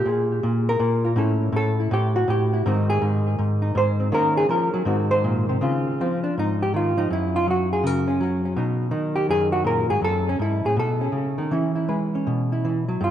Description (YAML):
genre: solo jazz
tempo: 162 BPM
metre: 4/4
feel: swing 66% on 8ths, rubato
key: unclear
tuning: A4 = 436 Hz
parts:
  - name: hollow-body jazz guitar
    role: solo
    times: 0.0-13.1 s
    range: Gb2 to C5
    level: -20 LUFS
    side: equal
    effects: tape echo
room: wet plate reverb, RT60 2.7 s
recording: dreamy mix soaked in reverb, nothing above 10.4 kHz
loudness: -20 LUFS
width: side -10 dB against mid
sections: 0.0-5.6 A section; 5.6-13.1 A section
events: hollow-body jazz guitar solo 0.0-5.6, 5.6-13.1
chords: 0.0 Bb5; 1.2 A7; 2.6 Ab; 4.1 Ebm7; 4.9 Ab7; 5.6 Dbmaj9; 7.1 Gb; 8.6 B6; 10.0 Gbmadd9; 10.8 B9; 11.5 E6